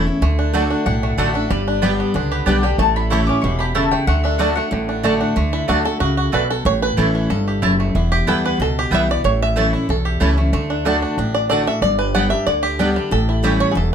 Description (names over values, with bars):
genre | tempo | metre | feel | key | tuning
bluegrass | 186 BPM | 4/4 | straight | D major | A4 = 441 Hz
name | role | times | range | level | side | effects
mandolin | melody | 0.0-5.0 s | B4 to D6 | -24 LUFS | left 6 dB | none
picked steel-string acoustic guitar | accompaniment | 0.0-13.9 s | E2 to G4 | -20 LUFS | left 2 dB | none
upright bass | bass | 0.0-13.9 s | E1 to D2 | -21 LUFS | equal | none
bluegrass banjo | melody | 0.2-13.9 s | D3 to F#5 | -21 LUFS | right 2 dB | tape echo
mandolin | stabs | 0.5-13.5 s | A3 to A5 | -22 LUFS | right 5 dB | none
room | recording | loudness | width
light reverb | close, detailed microphones | -16 LUFS | side -8 dB against mid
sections
0.0-5.4 A section; 5.4-13.9 B section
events
five-string banjo solo 5.4-13.9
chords
0.2 D; 1.5 G; 2.8 A; 4.1 D; 6.7 A; 7.9 Em; 9.2 A; 10.5 D; 11.8 G; 13.1 A7